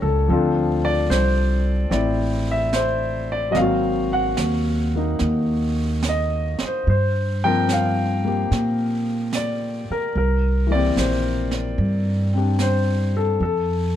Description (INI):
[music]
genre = jazz ballad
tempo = 73 BPM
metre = 4/4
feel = swing 69% on 8ths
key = unclear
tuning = A4 = 440 Hz
[part]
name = warm concert grand piano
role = accompaniment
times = 0.0-14.0 s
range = E3 to G5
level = -22 LUFS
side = left 2 dB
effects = none
[part]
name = upright bass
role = bass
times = 0.0-14.0 s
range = Ab1 to Bb2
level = -21 LUFS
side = right 1 dB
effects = none
[part]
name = jazz brush drum kit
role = drums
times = 0.3-14.0 s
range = brushed snare drum, hi-hat, snare drum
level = -32 LUFS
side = right 4 dB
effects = none
[sound]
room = light reverb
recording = dark, warm production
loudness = -19 LUFS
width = side -10 dB against mid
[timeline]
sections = 0.0-14.0 A section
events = none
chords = 0.3 Dm9; 3.5 Ab9; 6.9 Gm7; 10.2 C7; 13.4 F